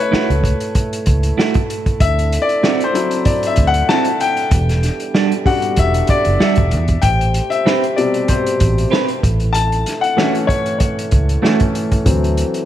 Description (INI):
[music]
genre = lush 1970s-style soul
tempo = 96 BPM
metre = 4/4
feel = swing 54% on 16ths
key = unclear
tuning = A4 = 440 Hz
[part]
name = warm baby grand piano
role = accompaniment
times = 0.0-12.7 s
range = B2 to A5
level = -18 LUFS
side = left 4 dB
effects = none
[part]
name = warm French horn section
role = sustained chords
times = 0.0-12.7 s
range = D3 to C5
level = -25 LUFS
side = right 1 dB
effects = none
[part]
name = semi-hollow electric guitar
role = riff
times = 0.1-11.6 s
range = G3 to B4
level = -21 LUFS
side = right 7 dB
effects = spring reverb
[part]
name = vintage muted fingered electric bass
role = bass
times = 0.1-12.4 s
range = E1 to E2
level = -16 LUFS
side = equal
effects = none
[part]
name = vintage drum kit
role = drums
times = 0.1-12.7 s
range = hi-hat, kick drum, snare drum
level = -18 LUFS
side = right 1 dB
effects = none
[sound]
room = light reverb, small room ambience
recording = none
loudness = -13 LUFS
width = side -12 dB against mid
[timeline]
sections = 0.0-7.0 A section; 7.0-12.7 B section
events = grand piano solo 0.0-7.0, 7.0-12.7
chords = 0.0 F#m7; 2.0 D9; 4.5 Em9; 7.0 Am9; 9.2 F#m7/A; 12.1 D9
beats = 0.12 0.75 1.38 | 2.01 2.63 3.26 3.89 | 4.52 5.15 5.78 6.40 | 7.03 7.66 8.29 8.92 | 9.55 10.18 10.80 11.43 | 12.06